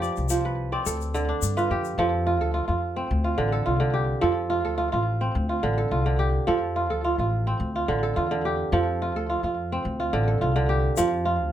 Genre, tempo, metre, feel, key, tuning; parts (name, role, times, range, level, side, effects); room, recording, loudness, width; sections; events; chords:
west african traditional, West African string and xylophone music; 107 BPM; 4/4; straight; A4 = 440 Hz
kora; arpeggios; 0.0-11.5 s; D3 to D5; -24 LUFS; right 2 dB; slapback echo
upright bass; bass; 0.0-11.5 s; A1 to G2; -26 LUFS; left 1 dB
egg shaker; percussion; 0.0-1.9, 11.0-11.1 s; -34 LUFS; left 11 dB
little or no reverb; close, detailed microphones; -22 LUFS; side -11 dB against mid
0.0-2.0 A section; 2.0-11.0 B section
0.0 F5; 0.9 Dm; 8.7 F; 9.9 Dm; 11.0 F5